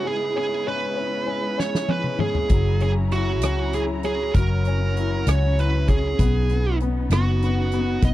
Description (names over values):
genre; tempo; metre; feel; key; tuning
six-eight pop ballad; 65 BPM (dotted quarters); 6/8; straight; unclear; A4 = 442 Hz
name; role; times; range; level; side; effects
high-gain lead guitar; melody; 0.0-8.1 s; F#4 to D#5; -26 LUFS; right 4 dB; distortion
clear baby grand piano; accompaniment; 0.0-8.1 s; F#3 to E4; -28 LUFS; left 7 dB; none
rich studio string section; sustained chords; 0.0-8.1 s; C#3 to A#5; -31 LUFS; right 1 dB; none
natural country drum kit; drums; 1.6-8.1 s; hi-hat, kick drum, rim click, snare drum, toms; -22 LUFS; equal; none
vintage muted fingered electric bass; bass; 2.5-8.1 s; F#1 to C#2; -22 LUFS; equal; none
room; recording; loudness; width
little or no reverb; dry, close 1970s-style studio recording; -20 LUFS; side -15 dB against mid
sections
0.0-8.1 A section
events
drum fill 1.6-2.5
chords
0.0 C#m7; 2.5 F#7; 6.2 Badd9